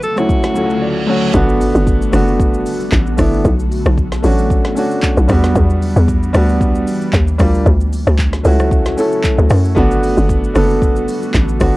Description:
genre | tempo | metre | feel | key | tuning
amapiano | 114 BPM | 4/4 | swing 55% on 16ths | unclear | A4 = 438 Hz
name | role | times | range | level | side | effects
bright alto saxophone | melody | 0.0-1.0 s | F#4 to A4 | -21 LUFS | equal | analog delay
ethereal airy pad | sustained chords | 0.0-11.8 s | C#3 to F#4 | -24 LUFS | left 1 dB | ensemble chorus, built-in reverb
deep house drum kit | drums | 0.0-11.7 s | handclaps, hi-hat, kick drum, rim click, shaker, snare drum | -18 LUFS | equal | none
warm grand piano | accompaniment | 0.2-11.8 s | D2 to D5 | -17 LUFS | equal | none
reverse cymbal and impact | sound effects | 0.5-3.4 s | none | -27 LUFS | right 1 dB | none
hollow log drum bass | bass | 1.3-11.8 s | F#1 to F#2 | -14 LUFS | equal | none
room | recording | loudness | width
little or no reverb | dry, gritty hardware recording | -11 LUFS | side -19 dB against mid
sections
0.0-1.3 A section; 1.3-11.8 B section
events
reverse cymbal 0.5-1.3; grand piano fill 0.6-1.3; drop 1.3-11.8; impact 1.3-3.5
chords
0.0 Dmaj7; 1.3 Gmaj9; 3.5 Bm7; 5.3 Em7; 7.1 D#maj7; 7.7 Dmaj7; 9.8 Gmaj9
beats
0.29 0.82 | 1.34 1.87 2.40 2.92 | 3.45 3.98 4.50 5.03 | 5.55 6.08 6.61 7.13 | 7.66 8.19 8.71 9.24 | 9.77 10.29 10.82 11.35

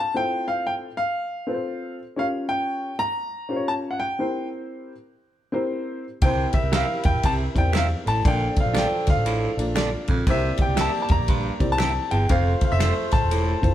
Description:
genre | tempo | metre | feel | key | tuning
uptempo 1960s-style soul | 118 BPM | 4/4 | swing 63% on 8ths | unclear | A4 = 440 Hz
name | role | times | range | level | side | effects
clear grand piano | melody | 0.0-13.7 s | E5 to Bb5 | -26 LUFS | left 1 dB | none
dark upright piano | accompaniment | 0.1-13.7 s | Bb3 to D5 | -29 LUFS | left 2 dB | none
mellow saxophone section | second line | 6.2-13.7 s | F3 to D5 | -31 LUFS | right 1 dB | none
raspy baritone saxophone | riff | 6.2-13.6 s | E2 to C3 | -29 LUFS | right 3 dB | none
vintage muted fingered electric bass | bass | 6.2-13.7 s | E1 to E2 | -24 LUFS | equal | none
warm soul drum kit | drums | 6.2-13.7 s | kick drum, ride cymbal, snare drum | -24 LUFS | equal | none
electric guitar at the edge of break-up | stabs | 6.7-12.9 s | F4 to E5 | -29 LUFS | right 4 dB | none
finger snaps | percussion | 6.7-13.0 s | none | -36 LUFS | left 2 dB | none
room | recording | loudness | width
light reverb | band playing live in one room | -21 LUFS | side -12 dB against mid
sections
0.0-13.7 A section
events
upright piano fill 13.6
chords
0.1 Fmaj7; 2.2 Bbm6; 4.2 C7; 8.2 Bbmaj7; 10.3 C7; 12.3 Fmaj7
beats
| 0.15 0.65 1.16 1.66 | 2.17 2.68 3.18 3.69 | 4.19 4.70 5.21 5.71 | 6.22 6.72 7.23 7.74 | 8.24 8.75 9.26 9.76 | 10.27 10.78 11.29 11.79 | 12.30 12.81 13.31

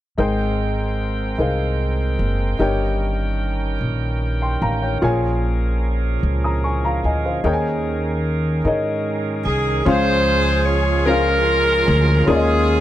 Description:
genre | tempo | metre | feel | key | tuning
slow gospel | 50 BPM (dotted quarters) | 6/8 | straight | Ab major | A4 = 440 Hz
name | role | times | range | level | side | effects
warm baby grand piano | accompaniment | 0.2-12.8 s | G2 to Eb6 | -23 LUFS | left 2 dB | none
bright tonewheel organ | sustained chords | 0.2-12.8 s | Eb3 to G5 | -26 LUFS | right 4 dB | slow rotary speaker, overdrive
upright bass | bass | 0.2-12.8 s | Gb1 to Ab2 | -21 LUFS | equal | none
edgy saxophone section | melody | 9.5-12.8 s | Db4 to Db5 | -18 LUFS | equal | none
room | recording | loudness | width
little or no reverb | dry, close 1970s-style studio recording | -17 LUFS | side -13 dB against mid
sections
0.2-9.9 A section; 9.9-12.8 B section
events
none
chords
0.2 Abmaj9; 2.6 Eb7/G; 5.0 Bbm7; 7.4 Eb7sus4; 9.9 Dbmaj7; 12.3 Eb9sus4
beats
| 0.18 1.39 | 2.60 3.81 | 5.02 6.23 | 7.44 8.65 | 9.86 11.07 | 12.28

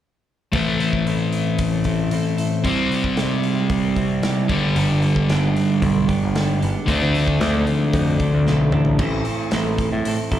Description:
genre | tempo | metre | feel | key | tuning
quiet-loud alternative rock | 114 BPM | 4/4 | straight | A minor | A4 = 440 Hz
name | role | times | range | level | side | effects
twelve-string electric guitar | arpeggios | 0.5-10.4 s | G2 to A4 | -24 LUFS | right 6 dB | none
crunchy overdriven guitar | riff | 0.5-9.0 s | G2 to D4 | -19 LUFS | left 2 dB | slapback echo
big rock drum kit | drums | 0.5-10.4 s | crash cymbal, hi-hat, kick drum, snare drum, toms | -26 LUFS | equal | none
overdriven picked electric bass | bass | 4.8-10.4 s | G1 to A2 | -22 LUFS | right 1 dB | none
room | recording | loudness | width
light reverb | live gig heard through the venue's PA, club reverb | -17 LUFS | side -11 dB against mid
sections
0.5-9.0 A section; 9.0-10.4 B section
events
drum fill 8.5-9.0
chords
0.5 Am; 2.6 C; 4.5 G; 6.9 Dm7; 9.0 Am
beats
| 0.53 1.06 1.59 2.12 | 2.65 3.18 3.71 4.23 | 4.76 5.29 5.82 6.35 | 6.88 7.41 7.93 8.46 | 8.99 9.52 10.05

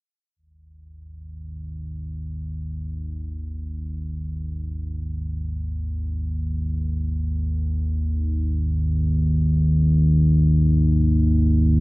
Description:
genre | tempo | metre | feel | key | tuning
ambient | free time | none | none | unclear | A4 = 440 Hz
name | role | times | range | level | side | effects
deep rumbling drone | drone | 0.9-11.8 s | G#1 to D#2 | -21 LUFS | equal | built-in reverb, lush chorus
room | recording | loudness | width
wet cathedral reverb, RT60 7.2 s | in a vast, echoing space, small speaker sound | -20 LUFS | side -22 dB against mid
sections
0.4-11.8 A section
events
none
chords
0.4 G#5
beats
free time

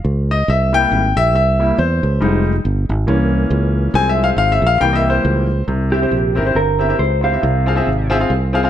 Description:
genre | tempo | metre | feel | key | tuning
uptempo gospel | 138 BPM | 4/4 | swing 57% on 8ths | unclear | A4 = 440 Hz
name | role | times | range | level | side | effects
fingered electric bass | bass | 0.0-8.7 s | F1 to E2 | -17 LUFS | equal | none
clear grand piano | accompaniment | 0.3-8.7 s | C3 to Ab5 | -16 LUFS | left 2 dB | none
mellow electric guitar | melody | 5.9-8.1 s | G4 to F5 | -19 LUFS | right 3 dB | none
room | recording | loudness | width
light reverb, studio reverb | dark, warm production | -13 LUFS | side -10 dB against mid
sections
0.0-5.7 A section; 5.7-8.7 B section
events
grand piano solo 0.0-5.7; grand piano fill 8.5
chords
0.5 C7; 2.2 Fm7; 3.1 C7b9; 3.9 Fm/C; 4.8 C7; 5.7 C; 7.4 Fm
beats
0.05 | 0.48 0.91 1.34 1.78 | 2.21 2.64 3.07 3.51 | 3.94 4.37 4.81 5.24 | 5.67 6.11 6.55 6.98 | 7.42 7.86 8.29

